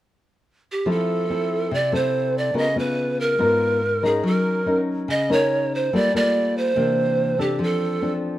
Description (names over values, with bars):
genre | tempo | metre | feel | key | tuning
bossa nova | 143 BPM | 4/4 | straight | unclear | A4 = 439 Hz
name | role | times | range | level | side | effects
breathy bright pan flute | melody | 0.7-8.1 s | G4 to Eb5 | -22 LUFS | right 2 dB | plate reverb
nylon-string guitar | accompaniment | 0.9-8.4 s | Ab2 to Bb4 | -22 LUFS | left 2 dB | none
room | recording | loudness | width
moderate studio reverb, RT60 0.6 s | dark, warm production | -19 LUFS | side -14 dB against mid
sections
0.9-8.4 A section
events
none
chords
0.0 N.C.; 0.9 Fmaj7; 2.5 Db13; 4.2 Gb6; 5.9 Gm9; 6.7 C9; 7.6 F6